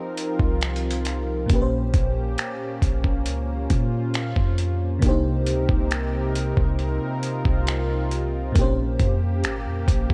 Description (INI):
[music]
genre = contemporary R&B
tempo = 68 BPM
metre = 4/4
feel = straight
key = Bb dorian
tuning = A4 = 441 Hz
[part]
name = FM electric piano with soft pad layer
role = accompaniment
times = 0.0-10.1 s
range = Bb2 to C5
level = -31 LUFS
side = equal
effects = chorus, tremolo
[part]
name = warm analog pad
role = sustained chords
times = 0.0-10.1 s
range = C3 to Bb4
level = -32 LUFS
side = equal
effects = chorus
[part]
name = dusty soul sampler-style drum kit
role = drums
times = 0.2-10.1 s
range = finger snaps, hi-hat, kick drum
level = -26 LUFS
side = equal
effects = overdrive
[part]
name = clean 808-style bass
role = bass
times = 0.4-10.1 s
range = Ab1 to Bb2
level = -27 LUFS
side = equal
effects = none
[sound]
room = digital ambience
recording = worn, warbling old tape, cassette tape, warbly pitch drift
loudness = -23 LUFS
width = mono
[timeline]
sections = 0.0-10.1 A section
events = none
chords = 0.0 F9sus4; 1.5 Bbm69; 5.0 Cm7; 8.6 Bbm69